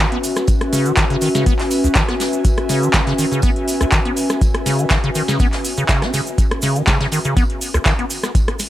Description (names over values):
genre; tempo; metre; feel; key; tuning
acid house; 122 BPM; 4/4; swing 53% on 16ths; C# minor; A4 = 437 Hz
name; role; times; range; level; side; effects
acid bass, square; riff; 0.0-8.1 s; C#2 to C#4; -21 LUFS; equal; tube saturation, wide subtle chorus, sidechain pumping, tape echo
airy breathy pad; texture; 0.0-8.3 s; C#4 to G#5; -22 LUFS; left 1 dB; chorus, sidechain pumping
booming analog drum machine; drums; 0.1-8.7 s; handclaps, hi-hat, rim click, snare drum; -21 LUFS; equal; overdrive
tambourine and snare drum; drums; 0.2-8.7 s; none; -30 LUFS; equal; high-pass filter on snare, sidechain pumping on perc, high-pass filter on perc, high-pass filter on room
tube shaker; percussion; 0.2-8.7 s; none; -30 LUFS; right 3 dB; none
electronic kick drum; drums; 0.5-8.5 s; none; -17 LUFS; equal; overdrive
room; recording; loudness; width
light reverb, small room ambience; none; -15 LUFS; side -14 dB against mid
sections
0.0-8.7 A section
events
none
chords
0.0 C#m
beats
| 0.48 0.97 1.47 1.96 | 2.45 2.94 3.43 3.92 | 4.42 4.91 5.40 5.89 | 6.38 6.87 7.37 7.86 | 8.35